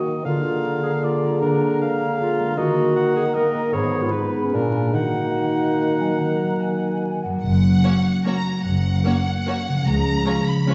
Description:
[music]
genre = classical, orchestral ballroom waltz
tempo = 138-168 BPM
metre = 3/4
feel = rubato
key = Eb minor, F# major from 7.4 s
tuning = A4 = 441 Hz
[part]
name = dark cor anglais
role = second line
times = 0.0-7.2 s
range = Bb4 to Gb5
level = -32 LUFS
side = equal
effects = none
[part]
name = mellow clarinet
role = second line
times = 0.0-7.0 s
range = Db4 to Bb4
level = -27 LUFS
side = equal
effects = none
[part]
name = mellow bassoon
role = accompaniment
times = 0.0-7.2 s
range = Ab2 to Eb3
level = -28 LUFS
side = equal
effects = none
[part]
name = mellow French horn section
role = sustained chords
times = 0.0-7.2 s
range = Bb3 to Bb4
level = -29 LUFS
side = equal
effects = none
[part]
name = concert harp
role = arpeggios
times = 0.0-10.7 s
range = F#2 to Cb5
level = -26 LUFS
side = equal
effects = none
[part]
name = mellow hollow small flute group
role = second line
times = 0.2-7.4 s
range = Gb5 to Cb6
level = -36 LUFS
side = equal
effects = none
[part]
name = rich studio violin section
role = melody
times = 7.4-10.7 s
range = F#5 to B5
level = -31 LUFS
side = equal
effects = none
[part]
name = dark studio double bass section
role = bass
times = 7.4-10.2 s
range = F#1 to C#2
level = -26 LUFS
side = equal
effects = none
[part]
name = warm studio cello section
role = bass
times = 7.4-10.2 s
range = C#2 to F#2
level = -26 LUFS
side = equal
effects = none
[part]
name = warm studio violin section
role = second line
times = 7.8-10.7 s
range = E#4 to C#5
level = -37 LUFS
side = equal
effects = none
[part]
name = warm studio viola section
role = accompaniment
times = 7.8-10.7 s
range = G#3 to C#4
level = -30 LUFS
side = equal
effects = none
[sound]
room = wet scoring stage reverb, RT60 1.8 s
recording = heard from further back in the room, vinyl crackle, nothing above 7.7 kHz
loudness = -21 LUFS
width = mono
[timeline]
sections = 0.0-7.4 A section; 7.4-10.7 B section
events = none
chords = 0.2 Bb7/D; 2.6 Ebm; 3.7 Abm; 4.5 Bb7; 4.9 Ebm; 7.4 F#; 9.9 C#7

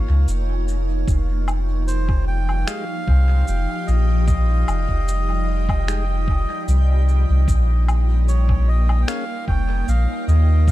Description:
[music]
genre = ambient dub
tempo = 75 BPM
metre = 4/4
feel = straight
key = unclear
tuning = A4 = 442 Hz
[part]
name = soft additive organ-like pad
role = sustained chords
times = 0.0-10.7 s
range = F3 to Eb5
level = -29 LUFS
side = equal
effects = ensemble chorus, built-in reverb
[part]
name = soft dub sub bass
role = bass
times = 0.0-10.7 s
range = F1 to Eb2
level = -17 LUFS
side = equal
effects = none
[part]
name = electronic shaker, woodblock and finger snaps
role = drums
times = 0.3-10.7 s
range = none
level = -32 LUFS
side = left 2 dB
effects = studio reverb, dub echo
[part]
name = electronic kick drum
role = drums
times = 1.1-10.7 s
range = none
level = -21 LUFS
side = equal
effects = studio reverb
[part]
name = backwards swelling texture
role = texture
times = 1.1-10.7 s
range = G3 to G5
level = -35 LUFS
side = right 2 dB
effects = built-in reverb
[part]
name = melodica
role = melody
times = 1.9-10.7 s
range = C5 to G5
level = -30 LUFS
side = equal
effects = dub echo
[part]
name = tonewheel organ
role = stabs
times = 2.7-9.2 s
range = Ab3 to Ab4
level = -36 LUFS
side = left 3 dB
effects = slow rotary speaker, dub echo
[sound]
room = digital ambience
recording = echo-heavy mix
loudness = -17 LUFS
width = side -16 dB against mid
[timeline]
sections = 0.0-10.7 A section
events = none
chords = 0.0 Bbm; 1.1 F7sus2; 7.5 Bbm

